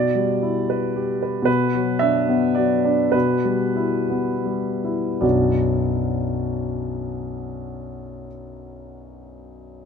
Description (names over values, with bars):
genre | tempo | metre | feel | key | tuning
classical, romantic character piece for solo piano | 74-116 BPM | 3/4 | rubato | B minor | A4 = 442 Hz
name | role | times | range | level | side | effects
warm concert grand piano | solo | 0.0-9.9 s | B1 to E5 | -20 LUFS | equal | none
room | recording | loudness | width
moderate scoring stage reverb, RT60 1.9 s | close, detailed microphones | -19 LUFS | side -6 dB against mid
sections
0.0-5.2 A section; 5.2-9.6 B section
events
slowing down 0.7-5.2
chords
0.0 Em/B; 1.5 Bm; 3.1 Em/B; 5.2 Bm